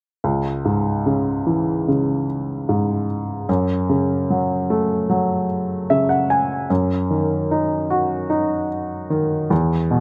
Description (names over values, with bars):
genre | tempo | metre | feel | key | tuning
pop | 75 BPM | 4/4 | straight | unclear | A4 = 436 Hz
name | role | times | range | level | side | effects
warm baby grand piano | accompaniment | 0.2-10.0 s | C#2 to G#5 | -20 LUFS | equal | none
room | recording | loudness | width
little or no reverb | recorded outdoors, with no room sound | -21 LUFS | mono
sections
0.2-10.0 A section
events
grand piano fill 5.5-6.7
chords
0.2 C#m; 3.5 F#m; 6.7 D#m/F#